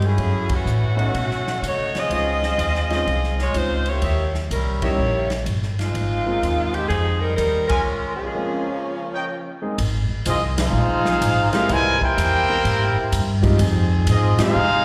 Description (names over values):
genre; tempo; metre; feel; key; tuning
jazz, big band swing; 125 BPM; 4/4; swing 66% on 8ths; Ab major; A4 = 438 Hz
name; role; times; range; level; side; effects
clear saxophone section; melody; 0.0-9.6 s; Eb3 to Eb5; -26 LUFS; equal; slapback echo
upright bass; bass; 0.0-14.8 s; G1 to C#3; -24 LUFS; equal; none
swinging big-band drum kit; drums; 0.0-14.5 s; hi-hat, kick drum, ride cymbal, snare drum; -31 LUFS; equal; none
warm baby grand piano; accompaniment; 0.2-14.5 s; Gb3 to Ab4; -29 LUFS; equal; slapback echo
warm trumpet section; stabs; 2.1-9.2 s; F4 to Ab5; -31 LUFS; equal; slapback echo
muted trombone section; second line; 8.2-14.8 s; Bb2 to G4; -31 LUFS; equal; slapback echo
clear trumpet section; melody; 10.3-14.8 s; C4 to Ab5; -22 LUFS; equal; slapback echo
clear trombone section; sustained chords; 11.0-14.8 s; F3 to Bb4; -32 LUFS; equal; none
room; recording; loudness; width
light reverb, studio reverb; live gig heard through the venue's PA, recital hall reverb; -21 LUFS; mono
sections
0.0-9.8 A section; 9.8-14.8 B section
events
band accent 0.4, 4.7, 7.6, 10.5, 14.3; break 7.9-9.8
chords
0.2 Gbm7; 1.1 B9; 2.1 Dbmaj9; 4.0 Eb7b9; 5.9 Ab6; 7.9 Bbm7; 8.8 Eb7; 9.8 Ab6; 11.7 C7b13; 13.6 Fm7